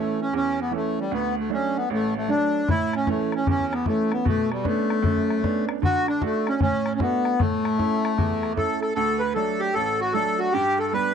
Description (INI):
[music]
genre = celtic folk, Celtic hornpipe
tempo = 153 BPM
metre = 4/4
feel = swing 64% on 8ths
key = unclear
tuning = A4 = 439 Hz
[part]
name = accordion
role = melody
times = 0.0-11.1 s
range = G3 to B4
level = -23 LUFS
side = left 2 dB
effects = none
[part]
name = bright baby grand piano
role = accompaniment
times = 0.0-11.1 s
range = A1 to F#4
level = -27 LUFS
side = right 12 dB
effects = none
[part]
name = bodhran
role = percussion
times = 2.7-8.9 s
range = none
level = -26 LUFS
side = left 3 dB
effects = none
[sound]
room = small room reverb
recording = dry, close 1970s-style studio recording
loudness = -21 LUFS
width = side -7 dB against mid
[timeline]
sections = 0.0-9.0 A section; 9.0-11.1 B section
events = none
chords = 0.0 A; 1.1 D; 2.7 A; 4.3 Bmadd9; 5.8 D; 7.4 A; 9.0 D; 10.5 G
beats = 0.32 0.71 | 1.11 1.50 1.89 2.29 | 2.68 3.07 3.47 3.86 | 4.25 4.64 5.04 5.43 | 5.82 6.22 6.61 7.00 | 7.39 7.79 8.18 8.57 | 8.96 9.36 9.75 10.14 | 10.53 10.93